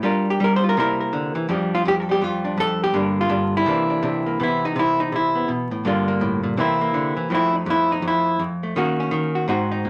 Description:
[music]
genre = solo jazz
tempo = 165 BPM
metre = 4/4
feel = swing 63% on 8ths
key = unclear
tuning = A4 = 440 Hz
[part]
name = archtop guitar, miked and amplified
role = solo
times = 0.0-9.9 s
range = F2 to C5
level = -21 LUFS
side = equal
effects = none
[sound]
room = moderate studio ambience, RT60 0.5 s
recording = vinyl crackle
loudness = -21 LUFS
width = mono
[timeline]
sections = 0.0-4.4 A section; 4.4-9.9 B section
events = hollow-body jazz guitar solo 4.4-9.9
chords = 0.0 Gm7; 0.8 C7; 1.5 Fsus2; 2.9 Gm7; 3.7 C9; 4.4 Cmaj7; 5.8 Gm7; 6.6 C7; 7.3 Fmaj7; 8.7 Ebm7

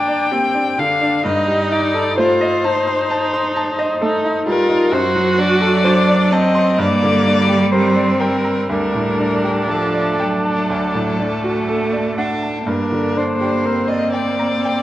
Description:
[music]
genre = classical, slow romantic movement for piano quartet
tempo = 56-66 BPM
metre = 4/4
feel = rubato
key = G minor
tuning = A4 = 442 Hz
[part]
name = rich violin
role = melody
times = 0.0-14.8 s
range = A4 to G5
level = -20 LUFS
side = left 3 dB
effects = none
[part]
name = bright baby grand piano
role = accompaniment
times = 0.0-14.8 s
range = D2 to C6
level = -20 LUFS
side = equal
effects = none
[part]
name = clear viola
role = accompaniment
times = 0.0-14.8 s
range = Bb3 to F#4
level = -20 LUFS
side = right 1 dB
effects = none
[part]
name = bright cello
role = second line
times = 0.3-14.8 s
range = F3 to D4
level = -20 LUFS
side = right 3 dB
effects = none
[sound]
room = moderate scoring stage reverb, RT60 1.8 s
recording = worn, warbling old tape, cassette tape, warbly pitch drift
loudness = -14 LUFS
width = side -14 dB against mid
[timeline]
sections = 0.0-14.8 A section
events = none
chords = 0.0 Gm; 1.3 Am7b5/G; 4.9 D7/F#; 6.8 Gm; 8.7 Dsus4; 10.7 D; 12.7 Gm

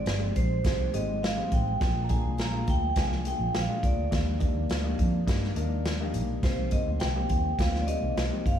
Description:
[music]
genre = uptempo 1960s-style soul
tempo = 104 BPM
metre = 4/4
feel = straight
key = Eb major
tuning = A4 = 439 Hz
[part]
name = vibraphone with medium hard mallets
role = melody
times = 0.0-8.6 s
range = C5 to Bb5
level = -33 LUFS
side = right 2 dB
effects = none
[part]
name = dark upright piano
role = accompaniment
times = 0.0-8.6 s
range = Ab3 to Bb4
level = -34 LUFS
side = left 5 dB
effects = none
[part]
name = vintage muted fingered electric bass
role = bass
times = 0.0-8.6 s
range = Gb1 to G2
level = -30 LUFS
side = equal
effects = none
[part]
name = swinging big-band drum kit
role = drums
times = 0.1-8.6 s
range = hi-hat, kick drum, snare drum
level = -29 LUFS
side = equal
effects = none
[sound]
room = light reverb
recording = studio reverb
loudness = -25 LUFS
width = side -9 dB against mid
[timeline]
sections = 0.0-8.6 A section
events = none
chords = 0.0 Abmaj7; 1.8 Bb7; 4.1 Ebmaj7; 6.4 Cm7

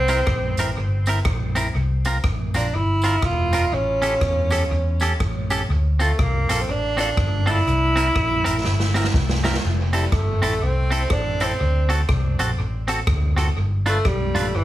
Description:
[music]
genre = ska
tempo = 122 BPM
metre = 4/4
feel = swing 61% on 8ths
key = F major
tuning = A4 = 440 Hz
[part]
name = warm tenor saxophone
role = melody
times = 0.0-14.6 s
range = E3 to F4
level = -24 LUFS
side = right 1 dB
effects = dub echo
[part]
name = vintage muted fingered electric bass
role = bass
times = 0.0-14.6 s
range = E1 to E2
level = -22 LUFS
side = equal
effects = none
[part]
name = clean electric guitar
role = accompaniment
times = 0.1-14.5 s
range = C4 to B4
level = -24 LUFS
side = right 1 dB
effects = none
[part]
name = street-band drum kit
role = drums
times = 0.1-14.4 s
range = hi-hat, kick drum, rim click, snare drum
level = -25 LUFS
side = equal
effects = dub echo
[part]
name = tambourine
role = percussion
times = 0.1-9.5 s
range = none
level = -39 LUFS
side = left 5 dB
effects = none
[sound]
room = light reverb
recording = small room reverb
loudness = -18 LUFS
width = side -14 dB against mid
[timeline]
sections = 0.0-9.6 A section; 9.6-14.6 A section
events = drum fill 8.6-9.6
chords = 0.0 C7; 1.8 C7sus4; 3.7 A7; 5.7 Dm7; 7.7 C7; 9.6 Fmaj7; 11.6 D7; 13.6 G7

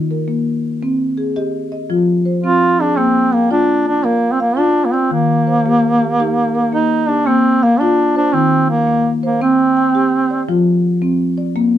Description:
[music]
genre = southern african traditional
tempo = 112 BPM (dotted quarters)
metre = 12/8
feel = straight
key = Bb mixolydian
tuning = A4 = 443 Hz
[part]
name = marimba with soft mallets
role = arpeggios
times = 0.0-11.8 s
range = Eb3 to G5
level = -16 LUFS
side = left 2 dB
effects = none
[part]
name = warm duduk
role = melody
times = 2.4-10.4 s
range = Bb3 to F4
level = -14 LUFS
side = right 2 dB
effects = none
[sound]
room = wet small room reverb, RT60 0.5 s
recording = dark, warm production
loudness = -13 LUFS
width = side -11 dB against mid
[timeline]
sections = 0.0-7.3 A section; 7.3-11.8 A section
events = none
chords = 0.0 Eb5; 0.8 Cm; 1.9 Fm; 3.0 Bb; 5.1 Eb; 7.3 Bb; 8.3 Eb5; 9.4 C5; 10.5 F5

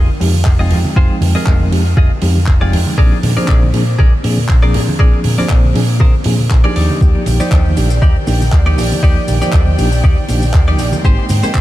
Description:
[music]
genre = nu-disco, nu disco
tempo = 119 BPM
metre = 4/4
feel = swing 54% on 16ths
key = unclear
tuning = A4 = 440 Hz
[part]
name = direct-recorded clean electric guitar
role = riff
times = 0.0-11.6 s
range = Eb4 to Eb5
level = -23 LUFS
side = left 1 dB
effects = wide subtle chorus, low-pass filter, ping-pong delay
[part]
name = picked electric bass with an envelope filter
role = bass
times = 0.0-11.6 s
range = F1 to Bb2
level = -14 LUFS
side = equal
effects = none
[part]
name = mellow reed electric piano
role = accompaniment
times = 0.2-11.6 s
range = F3 to G5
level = -19 LUFS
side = right 1 dB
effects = fast tremolo, sidechain pumping, ping-pong delay
[part]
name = damped 70s drum kit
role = drums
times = 0.2-11.6 s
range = handclaps, hi-hat, shaker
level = -24 LUFS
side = right 2 dB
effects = small room reverb
[part]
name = congas and cabasa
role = percussion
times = 0.2-11.6 s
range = none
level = -24 LUFS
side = right 2 dB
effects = none
[part]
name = electronic kick drum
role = drums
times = 0.5-11.6 s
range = none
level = -11 LUFS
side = equal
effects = overdrive, small room reverb
[part]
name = rich studio string section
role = sustained chords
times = 7.0-11.6 s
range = Eb3 to C6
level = -24 LUFS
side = equal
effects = sidechain pumping
[sound]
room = light reverb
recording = none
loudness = -10 LUFS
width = side -15 dB against mid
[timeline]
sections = 0.0-11.6 A section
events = none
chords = 0.0 Fm7; 3.0 Bb7; 6.8 Ebmaj7; 11.0 Abmaj7

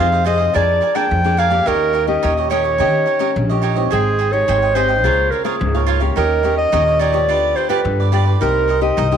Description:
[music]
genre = samba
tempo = 107 BPM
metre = 4/4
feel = straight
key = unclear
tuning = A4 = 439 Hz
[part]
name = mellow clarinet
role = melody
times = 0.0-9.2 s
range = Ab4 to G5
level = -17 LUFS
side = right 1 dB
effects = none
[part]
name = cavaquinho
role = accompaniment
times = 0.0-9.2 s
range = D4 to Ab5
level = -22 LUFS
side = right 10 dB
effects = none
[part]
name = nylon-string guitar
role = accompaniment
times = 0.0-9.2 s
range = G2 to Ab4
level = -23 LUFS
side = left 9 dB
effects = none
[part]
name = upright bass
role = bass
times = 0.0-9.2 s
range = Ab1 to Eb3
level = -19 LUFS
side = equal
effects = none
[sound]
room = moderate echo chamber reverb, RT60 1.8 s, small room ambience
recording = 1960s-style stereo with parts hard left and right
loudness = -14 LUFS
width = side -8 dB against mid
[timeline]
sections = 0.0-9.2 A section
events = none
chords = 0.0 Fm7; 0.5 Bb7/F; 1.7 Eb7; 3.9 Abmaj7; 5.0 Db6; 6.2 Eb7; 7.3 G7/D; 8.4 Cm7

